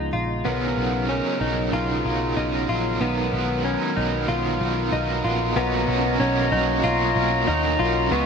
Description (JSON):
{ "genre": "dream pop", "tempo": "94 BPM", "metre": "4/4", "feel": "straight", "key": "B lydian", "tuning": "A4 = 437 Hz", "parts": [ { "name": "warm woodwind section", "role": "sustained chords", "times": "0.0-8.3 s", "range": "C#3 to C#6", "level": "-27 LUFS", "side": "equal", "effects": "none" }, { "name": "direct-recorded clean electric guitar", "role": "arpeggios", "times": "0.0-8.3 s", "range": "B3 to E#4", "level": "-24 LUFS", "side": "left 3 dB", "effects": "analog chorus, ping-pong delay" }, { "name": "vintage muted picked electric bass", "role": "bass", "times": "0.0-8.3 s", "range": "A#1 to D#2", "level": "-27 LUFS", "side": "right 1 dB", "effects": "none" }, { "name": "cranked stack guitar", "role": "accompaniment", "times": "0.4-8.3 s", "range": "B2 to A#4", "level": "-26 LUFS", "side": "right 5 dB", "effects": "overdrive, tremolo, analog chorus" } ], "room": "wet huge ambient reverb, RT60 4.3 s", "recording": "none", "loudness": "-20 LUFS", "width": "side -6 dB against mid", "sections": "0.0-5.6 A section; 5.6-8.3 B section", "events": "none", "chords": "0.5 Bmaj9; 3.0 G#m9/B; 5.6 Bmaj9", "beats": "| 0.46 1.09 1.73 2.37 | 3.01 3.65 4.29 4.92 | 5.56 6.20 6.84 7.48 | 8.12" }